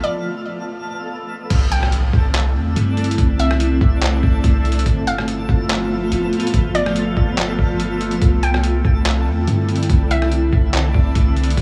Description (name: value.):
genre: hip hop, atmospheric cloud-rap.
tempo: 143 BPM.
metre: 4/4.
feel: half-time.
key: C major.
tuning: A4 = 442 Hz.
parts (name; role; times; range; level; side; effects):
hollow square pluck; melody; 0.0-10.7 s; D5 to G5; -30 LUFS; equal; chorus, digital delay.
twinkling granular texture; texture; 0.0-11.6 s; B3 to E6; -32 LUFS; equal; built-in reverb.
granular cloud pad; sustained chords; 2.1-11.6 s; D3 to F4; -24 LUFS; equal; built-in reverb, sidechain pumping.
clean 808-style bass; bass; 1.5-11.6 s; F1 to G2; -21 LUFS; equal; none.
trip hop sampler-style drum kit; drums; 1.5-11.6 s; crash cymbal, handclaps, hi-hat, kick drum, rim click; -22 LUFS; equal; none.
impact; sound effects; 1.5-3.2 s; none; -30 LUFS; equal; none.
room: light reverb, digital ambience.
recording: small room ambience.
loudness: -17 LUFS.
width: mono.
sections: 0.0-1.5 A section; 1.5-11.6 B section.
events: stop 0.0-1.5; impact 1.5-3.2.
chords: 0.0 G13 (rootless); 1.5 C69; 4.9 G13; 8.2 C69.